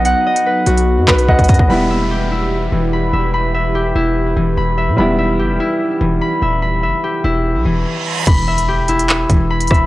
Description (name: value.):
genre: hip hop, drill.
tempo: 146 BPM.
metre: 4/4.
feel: half-time.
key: E harmonic minor.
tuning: A4 = 440 Hz.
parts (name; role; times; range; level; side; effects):
warm grand piano; accompaniment; 0.0-8.2 s; F#3 to D#5; -21 LUFS; equal; low-pass filter.
airy breathy pad; sustained chords; 0.0-7.8 s; E3 to B4; -24 LUFS; right 1 dB; chorus.
concert harp; arpeggios; 0.0-9.9 s; E3 to B5; -17 LUFS; left 1 dB; low-pass filter, tape echo.
distorted 808-style bass; bass; 0.0-9.9 s; D#1 to B2; -18 LUFS; equal; distortion.
drill drum kit; drums; 0.1-1.7, 8.3-9.8 s; crash cymbal, handclaps, hi-hat, kick drum, rim click; -14 LUFS; equal; none.
downlifter, reverse cymbal and impact; sound effects; 1.7-9.9 s; none; -26 LUFS; right 2 dB; none.
room: digital ambience.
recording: dry, gritty hardware recording, transformer saturation, cassette tape.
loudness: -13 LUFS.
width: side -17 dB against mid.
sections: 0.0-1.7 A section; 1.7-8.3 B section; 8.3-9.9 C section.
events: drum fill 1.3-1.7; reverse cymbal 7.7-8.3; stop 7.9-8.3; impact 8.3-9.9.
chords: 0.0 B; 1.7 Em.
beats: | 0.05 0.46 0.87 1.28 | 1.70 2.11 2.52 2.93 | 3.34 3.75 4.16 4.57 | 4.98 5.39 5.80 6.21 | 6.63 7.04 7.45 7.86 | 8.27 8.68 9.09 9.50.